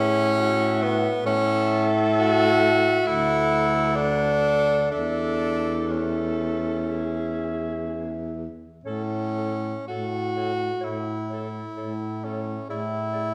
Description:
classical, lyrical piece for single-reed quartet; 56-70 BPM; 4/4; rubato; A major; A4 = 436 Hz
mellow clarinet; melody; 0.0-13.3 s; C#5 to F#5; -32 LUFS; equal
warm alto saxophone; second line; 0.0-13.3 s; F#4 to A4; -35 LUFS; equal
warm tenor saxophone; accompaniment; 0.0-13.3 s; B3 to F#4; -27 LUFS; equal
dark baritone saxophone; bass; 0.0-13.3 s; D2 to A2; -29 LUFS; equal
wet scoring stage reverb, RT60 1.6 s; recorded in a church or concert hall; -24 LUFS; mono
0.0-13.3 A section
0.0 E/A; 1.2 A5; 3.1 D; 4.9 A/E; 6.9 E; 8.8 A; 12.7 E7/A

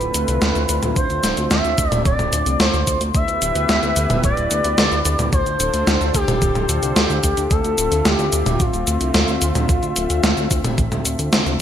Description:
synthwave; 110 BPM; 4/4; straight; D dorian; A4 = 444 Hz
expressive portamento lead; melody; 0.0-11.3 s; F4 to E5; -22 LUFS; left 1 dB; lush chorus, vintage 12-bit sampler grit, digital delay
brassy analog pad; sustained chords; 0.0-11.6 s; D3 to E5; -26 LUFS; equal; chorus, sidechain pumping
chorused synth bass; bass; 0.0-11.6 s; D1 to D2; -22 LUFS; equal
gated 80s digital drum machine; drums; 0.0-11.6 s; hi-hat, shaker, snare drum, toms; -20 LUFS; equal; gated reverb, gated reverb snare, overdrive
electronic kick drum; drums; 1.0-10.9 s; -21 LUFS; equal; overdrive
light reverb, digital ambience; bright 1980s-style digital production; -16 LUFS; side -9 dB against mid
0.0-11.6 A section
drum fill 11.3
0.0 Dm7; 3.1 Em7/D; 5.3 G7sus4/D; 7.5 Dm7

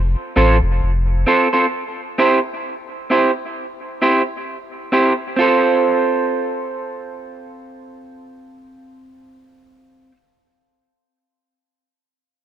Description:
reggae; 66 BPM; 4/4; swing 57% on 16ths; F major; A4 = 440 Hz
warm sub bass; bass; 0.0-1.2 s; F1 to A1; -16 LUFS; left 1 dB
electric guitar through a small old amp; accompaniment; 0.4-10.2 s; C4 to C5; -17 LUFS; right 2 dB; dub echo
light reverb, small room ambience; -15 LUFS; side -10 dB against mid
0.0-5.4 A section; 5.4-9.0 B section
0.0 F; 1.7 C; 5.4 F

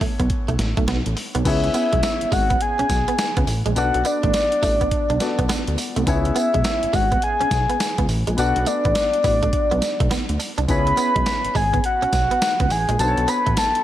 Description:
R&B, new jack swing; 104 BPM; 4/4; swing 64% on 16ths; A4 = 441 Hz
warm baby grand piano; accompaniment; 0.0-13.8 s; B3 to D5; -28 LUFS; left 4 dB
direct-recorded clean electric guitar; riff; 0.0-13.6 s; G#3 to D4; -28 LUFS; right 5 dB; ensemble chorus
fat analog bass; bass; 0.0-13.6 s; G#1 to D2; -23 LUFS; equal
boom bap sampler-style drum kit; drums; 0.0-13.8 s; crash cymbal, hi-hat, kick drum, snare drum, tambourine; -24 LUFS; equal; gated reverb
soft octave-layered synth lead; melody; 1.5-13.8 s; D5 to B5; -21 LUFS; left 1 dB; chorus
light reverb, digital ambience; -18 LUFS; side -12 dB against mid
0.0-1.5 A section; 1.5-13.8 B section
0.0 Bm9; 1.5 C#m7; 3.8 Bm7; 6.1 C#m7; 8.4 Bm7; 10.7 C#m7; 13.0 Bm9

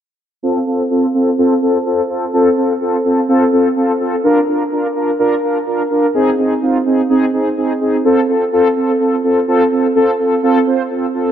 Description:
pop; 126 BPM; 4/4; straight; F major; A4 = 442 Hz
mellow synth brass; solo; 0.4-11.3 s; C4 to C5; -12 LUFS; equal; chorus, low-pass filter
wet plate reverb, RT60 3.0 s; -12 LUFS; side -9 dB against mid
0.4-8.0 A section; 8.0-11.3 B section
filter sweep on analog polysynth 0.4-8.0
0.4 F; 4.2 Bb; 6.1 Ab; 8.0 F

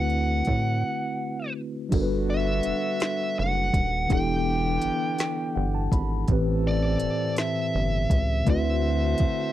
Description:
slow six-eight R&B; 55 BPM (dotted quarters); 6/8; straight; G major; A4 = 439 Hz
smooth overdriven lead guitar; melody; 0.0-9.5 s; D5 to G5; -28 LUFS; right 2 dB; slapback echo
mellow tine electric piano; accompaniment; 0.0-9.5 s; A2 to B5; -28 LUFS; left 1 dB; medium stereo tremolo
rubbery square bass; bass; 0.0-9.3 s; Eb1 to A2; -26 LUFS; equal
smooth R&B drum kit; drums; 0.1-9.4 s; crash cymbal, hi-hat, kick drum, snare drum; -25 LUFS; equal
warm horn section; stabs; 1.9-9.5 s; D3 to C5; -36 LUFS; left 7 dB
little or no reverb; dry, close 1970s-style studio recording; -23 LUFS; side -13 dB against mid
0.0-1.9 A section; 1.9-9.5 B section
break 0.8-1.9; tine electric piano fill 5.2-6.3
0.0 D13; 1.9 Gmaj9; 4.1 Em7; 6.3 Am9; 8.5 D13

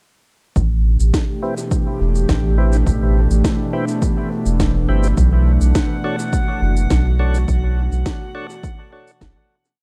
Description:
ambient dub; 104 BPM; 4/4; straight; A4 = 442 Hz
airy breathy pad; sustained chords; 0.6-9.8 s; B2 to G4; -26 LUFS; equal; chorus
soft dub sub bass; bass; 0.6-9.3 s; E1 to B1; -18 LUFS; equal
electronic kick drum; drums; 0.6-9.3 s; -23 LUFS; equal
electronic shaker and snare drum; drums; 0.6-9.8 s; -29 LUFS; equal; overdrive, dub echo
tonewheel organ; stabs; 1.4-9.1 s; C4 to C#5; -31 LUFS; equal; slow rotary speaker, low-pass filter, dub echo
drifting glass-harmonics texture; texture; 5.6-9.8 s; F#5; -34 LUFS; equal; chorus, built-in reverb
light reverb; dark, warm production; -17 LUFS; mono
0.6-9.8 groove
filter sweep on tonewheel organ 0.6-9.8; fade-out 6.7-9.8
0.6 Am7; 5.2 Bm7

